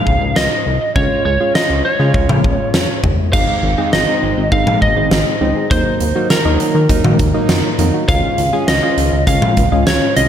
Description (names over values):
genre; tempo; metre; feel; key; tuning
synth-pop; 101 BPM; 4/4; straight; unclear; A4 = 438 Hz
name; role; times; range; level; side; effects
lightly driven lead guitar; melody; 0.0-10.3 s; Bb4 to F5; -18 LUFS; equal; digital delay
soft electric-piano-like synth keys; accompaniment; 0.0-10.3 s; Gb3 to Ab4; -20 LUFS; right 2 dB; chorus, slapback echo
chorused synth bass; bass; 0.1-10.3 s; Ab1 to Eb3; -17 LUFS; equal; none
huge arena drum kit; drums; 0.1-10.3 s; crash cymbal, hi-hat, kick drum, snare drum, toms; -17 LUFS; equal; none
soft round pluck; arpeggios; 3.3-10.3 s; Eb3 to Eb5; -24 LUFS; left 1 dB; chorus, digital delay, slapback echo
room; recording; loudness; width
moderate recital hall reverb, RT60 1.5 s, small room ambience; big arena sound; -12 LUFS; side -9 dB against mid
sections
0.0-3.3 A section; 3.3-10.3 B section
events
none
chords
0.0 Db; 3.3 Ab; 5.7 Ebm; 8.1 Dbadd9